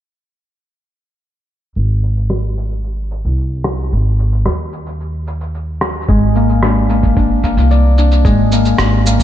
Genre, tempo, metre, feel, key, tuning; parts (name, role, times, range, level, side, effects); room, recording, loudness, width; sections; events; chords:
folktronica; 111 BPM; 4/4; straight; Ab lydian; A4 = 440 Hz
upright bass; bass; 1.8-9.2 s; Ab1 to Eb2; -14 LUFS; equal
electronic shaker and rim click; drums; 1.8-9.2 s; -22 LUFS; equal
Celtic harp; arpeggios; 6.1-9.2 s; Ab3 to D5; -14 LUFS; left 3 dB; ping-pong delay
electronic kick drum; drums; 6.1-9.2 s; -15 LUFS; equal
light reverb; low-pass filter; -12 LUFS; side -11 dB against mid
1.8-9.2 A section
filter sweep on upright bass 1.8-9.2; filter sweep 1.8-9.2
1.8 Ab; 6.1 Bb7/Ab